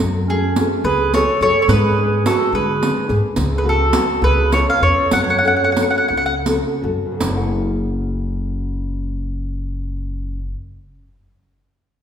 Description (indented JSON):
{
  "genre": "italian folk, Italian serenade",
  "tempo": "50-72 BPM (dotted quarters)",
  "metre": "6/8",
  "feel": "straight",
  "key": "F# minor",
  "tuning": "A4 = 440 Hz",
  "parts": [
    { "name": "nylon-string guitar", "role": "accompaniment", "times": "0.0-10.7 s", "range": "F#2 to F#5", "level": "-23 LUFS", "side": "left 2 dB", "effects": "none" },
    { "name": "upright bass", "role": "bass", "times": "0.0-10.5 s", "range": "F#1 to D3", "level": "-21 LUFS", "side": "left 1 dB", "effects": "none" },
    { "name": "riq", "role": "percussion", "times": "0.0-7.6 s", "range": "none", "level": "-24 LUFS", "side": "right 2 dB", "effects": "none" },
    { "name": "mandolin", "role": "melody", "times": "0.3-6.3 s", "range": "G#4 to F#5", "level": "-18 LUFS", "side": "equal", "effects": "none" },
    { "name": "mellow clarinet", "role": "second line", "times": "0.3-6.4 s", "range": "C#4 to C#5", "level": "-23 LUFS", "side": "right 6 dB", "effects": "none" }
  ],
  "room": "wet recital hall reverb, RT60 1.7 s",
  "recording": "recorded in a church or concert hall",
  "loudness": "-15 LUFS",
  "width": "side -8 dB against mid",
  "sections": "0.0-7.2 A section; 7.2-11.9 B section",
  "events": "slowing down 3.4-7.2",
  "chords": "0.0 F#madd9; 1.7 G#dim; 3.4 F#m/C#; 4.2 C#7; 5.1 F#m; 7.2 F#"
}